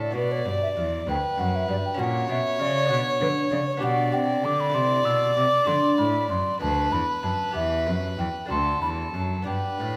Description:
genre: classical, baroque-style sonata movement with continuo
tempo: 65 BPM (dotted quarters)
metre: 6/8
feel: straight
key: unclear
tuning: A4 = 437 Hz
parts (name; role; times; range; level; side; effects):
- mellow hollow baroque flute; melody; 0.0-10.0 s; B4 to E6; -29 LUFS; equal; none
- warm violin; second line; 0.0-10.0 s; A4 to D5; -30 LUFS; equal; none
- lute; accompaniment; 0.0-10.0 s; D2 to A4; -34 LUFS; equal; none
- rich cello; bass; 0.0-10.0 s; D2 to D3; -31 LUFS; equal; none
room: wet recital hall reverb, RT60 1.6 s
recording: none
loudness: -24 LUFS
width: mono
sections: 0.0-10.0 A section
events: none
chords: 0.1 Bm; 2.0 F#7/A#; 2.9 Bm; 3.8 G/B; 4.7 Am; 5.7 D; 7.5 Em; 8.5 D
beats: | 0.15 1.07 | 1.99 2.90 | 3.82 4.74 | 5.67 6.61 | 7.55 8.50 | 9.47

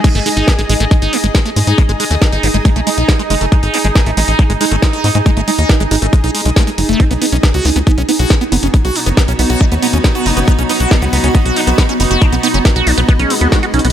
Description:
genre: psychedelic trance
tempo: 138 BPM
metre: 4/4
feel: straight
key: G# phrygian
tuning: A4 = 441 Hz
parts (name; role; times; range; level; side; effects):
- pulsing gated texture; sustained chords; 0.0-13.9 s; D#4; -20 LUFS; right 5 dB; chorus, built-in reverb, sidechain pumping
- liquid acid bass; riff; 0.0-13.9 s; F#3 to F#4; -18 LUFS; equal; phaser, auto-pan, sidechain pumping, dub echo
- drum and bass drum kit; drums; 0.0-13.9 s; crash cymbal, hi-hat, snare drum; -19 LUFS; equal; overdrive, low-pass filter on hats, studio reverb, low-pass filter on cymbals, low-pass filter on snare
- electronic kick drum; drums; 0.0-13.6 s; none; -11 LUFS; equal; studio reverb
- swell; sound effects; 0.0, 13.2-13.9 s; none; -24 LUFS; left 2 dB; none
- granular cloud pad; texture; 0.0-13.9 s; B3 to B5; -20 LUFS; left 1 dB; built-in reverb, sidechain pumping
- tight sequencer bass; bass; 0.1-13.9 s; F#1 to G#2; -15 LUFS; equal; none
room: little or no reverb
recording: none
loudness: -10 LUFS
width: side -10 dB against mid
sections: 0.0-13.9 A section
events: drop 0.0-13.9; swell 13.2-13.9; drum fill 13.7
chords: 0.0 G#5; 7.0 B5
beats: | 0.04 0.48 0.91 1.35 | 1.78 2.22 2.65 3.08 | 3.52 3.96 4.39 4.83 | 5.26 5.69 6.13 6.56 | 7.00 7.43 7.87 8.30 | 8.74 9.17 9.61 10.04 | 10.48 10.91 11.35 11.78 | 12.22 12.65 13.09 13.52

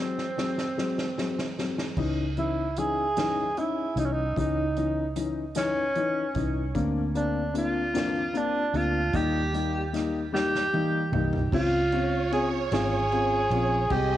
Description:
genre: six-eight pop ballad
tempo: 50 BPM (dotted quarters)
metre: 6/8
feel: straight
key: unclear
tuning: A4 = 440 Hz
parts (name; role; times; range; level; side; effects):
- breathy tenor saxophone; melody; 0.0-14.2 s; C4 to Ab4; -28 LUFS; right 2 dB; cassette tape, tape echo
- dark upright piano; accompaniment; 0.0-14.2 s; Fb3 to G4; -29 LUFS; left 4 dB; cassette tape
- unplugged drum kit; drums; 0.2-14.1 s; crash cymbal, hi-hat, kick drum, ride cymbal, snare drum, toms; -34 LUFS; right 2 dB; none
- vintage muted fingered electric bass; bass; 2.0-14.2 s; Ab1 to Eb2; -31 LUFS; right 2 dB; none
- warm studio violin section; second line; 11.5-14.2 s; Db5 to Eb5; -33 LUFS; right 7 dB; cassette tape
room: moderate lush hall reverb, RT60 2.4 s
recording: home recording on cassette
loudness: -24 LUFS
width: side -12 dB against mid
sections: 0.0-2.0 A section; 2.0-11.5 B section; 11.5-14.2 C section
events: drum fill 0.0-2.0, 10.3-11.5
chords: 0.0 Ab7; 2.0 Dbmadd9; 6.8 Bbadd9/D; 9.1 Eb; 11.5 Dbmaj7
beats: 0.78 | 1.97 3.17 | 4.36 5.56 | 6.75 7.94 | 9.14 10.33 | 11.52 12.71 | 13.90

